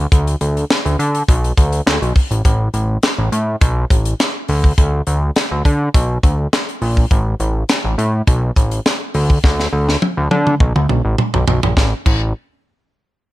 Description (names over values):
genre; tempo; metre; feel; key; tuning
early-eighties boogie funk; 103 BPM; 4/4; straight; unclear; A4 = 436 Hz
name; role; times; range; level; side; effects
fat analog bass; bass; 0.0-12.3 s; A1 to D3; -16 LUFS; equal; none
tight funk drum kit; drums; 0.1-12.2 s; crash cymbal, handclaps, hi-hat, kick drum, snare drum, toms; -15 LUFS; equal; none
room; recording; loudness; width
little or no reverb; none; -13 LUFS; side -17 dB against mid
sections
0.0-2.4 A section; 2.4-11.8 B section; 11.8-13.3 C section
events
drum fill 9.4-11.8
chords
none